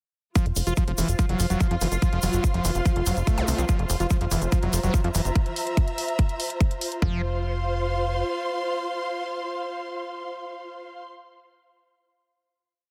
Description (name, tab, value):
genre	psychedelic trance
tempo	144 BPM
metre	4/4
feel	straight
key	unclear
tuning	A4 = 440 Hz
part	evolving wavetable pad	sustained chords	1.0-5.4 s	F4	-37 LUFS	equal	ensemble chorus, built-in reverb, phaser, vintage 12-bit sampler grit, sidechain pumping
part	screaming distorted acid line	riff	0.4-7.2 s	E3 to F4	-33 LUFS	equal	distortion, chorus, sidechain pumping, dub echo
part	electronic hi-hat	drums	0.4-7.0 s	none	-35 LUFS	equal	none
part	electronic kick drum	drums	0.4-7.1 s	none	-25 LUFS	equal	none
part	egg shaker	percussion	0.4-5.3 s	none	-36 LUFS	equal	none
part	warm symphonic string section	texture	0.4-11.1 s	F4 to C6	-33 LUFS	equal	sidechain pumping
part	plucky analog bass	bass	0.5-8.2 s	F1 to F2	-28 LUFS	equal	none
part	zap	sound effects	3.4-3.5 s	none	-37 LUFS	equal	none
room	light reverb, digital ambience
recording	dense, heavily limited modern master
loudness	-25 LUFS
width	mono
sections	0.4-7.0 groove; 7.0-10.4 final chord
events	none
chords	0.4 F5